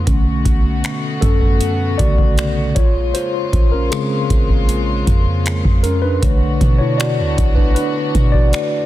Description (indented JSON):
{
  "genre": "contemporary R&B",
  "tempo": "78 BPM",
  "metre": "4/4",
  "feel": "straight",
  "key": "B minor",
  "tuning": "A4 = 441 Hz",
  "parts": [
    { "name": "mellow tine electric piano", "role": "accompaniment", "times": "0.0-8.9 s", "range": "C#3 to D5", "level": "-19 LUFS", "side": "left 1 dB", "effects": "medium stereo tremolo" },
    { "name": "warm studio string section", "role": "sustained chords", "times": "0.0-8.9 s", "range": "B2 to F#4", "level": "-25 LUFS", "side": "left 2 dB", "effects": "none" },
    { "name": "clean 808-style bass", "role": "bass", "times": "0.0-8.5 s", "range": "A#1 to B2", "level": "-19 LUFS", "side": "equal", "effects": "none" },
    { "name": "booming analog drum machine", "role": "drums", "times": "0.1-8.7 s", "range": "finger snaps, hi-hat, kick drum", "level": "-16 LUFS", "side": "equal", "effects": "overdrive, soft clipping on snare" }
  ],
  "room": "little or no reverb",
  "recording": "dense, heavily limited modern master",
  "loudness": "-13 LUFS",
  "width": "side -14 dB against mid",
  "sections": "0.0-8.9 A section",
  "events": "tine electric piano solo 0.0-8.9",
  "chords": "0.1 Bm9; 2.8 A#m9; 6.2 Bm9",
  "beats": "| 0.07 0.84 1.61 2.38 | 3.15 3.92 4.68 5.45 | 6.22 6.99 7.76 8.53"
}